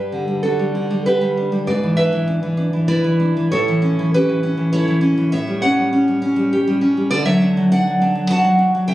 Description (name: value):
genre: romantic piece for solo classical guitar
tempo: 100 BPM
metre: 3/4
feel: rubato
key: D major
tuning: A4 = 441 Hz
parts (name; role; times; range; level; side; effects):
- nylon-string guitar; solo; 0.0-8.9 s; G2 to A5; -15 LUFS; equal; none
room: light reverb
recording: recorded on a phone in the room, studio reverb, compression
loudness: -15 LUFS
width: side -15 dB against mid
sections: 0.0-8.9 A section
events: none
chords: 0.0 G; 1.7 E7/G#; 3.5 A; 5.3 A6; 7.1 D